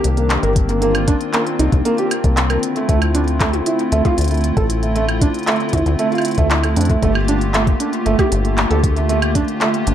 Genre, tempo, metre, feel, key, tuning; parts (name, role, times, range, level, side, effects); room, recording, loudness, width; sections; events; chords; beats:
IDM; 116 BPM; 4/4; straight; A4 = 439 Hz
hollow soft pad; sustained chords; 0.0-9.9 s; D3 to G4; -22 LUFS; left 2 dB; chorus, sidechain pumping
deep acid bass; bass; 0.0-9.9 s; G1 to F2; -18 LUFS; left 1 dB
organic electronic drum kit; drums; 0.0-9.9 s; handclaps, hi-hat, toms, woodblock; -22 LUFS; equal
felt-muted upright piano; arpeggios; 0.2-9.9 s; A3 to Bb4; -20 LUFS; right 3 dB; tape echo
electronic kick drum; drums; 0.6-9.5 s; -18 LUFS; left 1 dB
moderate digital room reverb, RT60 1.2 s; dark, warm production; -14 LUFS; side -10 dB against mid
0.0-9.9 A section
0.0 Cm9; 2.6 Dm9; 7.0 Gm9
0.30 | 0.82 1.33 1.85 2.37 | 2.89 3.40 3.92 4.44 | 4.96 5.47 5.99 6.51 | 7.03 7.54 8.06 8.58 | 9.09 9.61